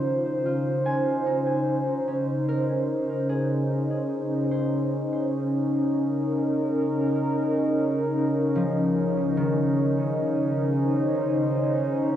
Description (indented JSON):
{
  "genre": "ambient",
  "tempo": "74 BPM",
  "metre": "3/4",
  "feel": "straight",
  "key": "unclear",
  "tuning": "A4 = 440 Hz",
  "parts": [
    { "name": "warbly tape-like pad", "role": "sustained chords", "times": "0.0-12.2 s", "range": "Db3 to C5", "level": "-23 LUFS", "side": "equal", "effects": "chorus, built-in reverb, cassette tape" },
    { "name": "concert harp", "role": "arpeggios", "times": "0.0-12.2 s", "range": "Eb3 to Ab5", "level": "-31 LUFS", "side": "left 1 dB", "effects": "cassette tape, analog delay" }
  ],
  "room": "wet small room reverb, RT60 0.5 s",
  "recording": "home recording on cassette, nothing above 10.6 kHz",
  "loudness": "-22 LUFS",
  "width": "side -11 dB against mid",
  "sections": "0.0-12.2 A section",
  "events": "none",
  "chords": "0.0 Dbmaj7"
}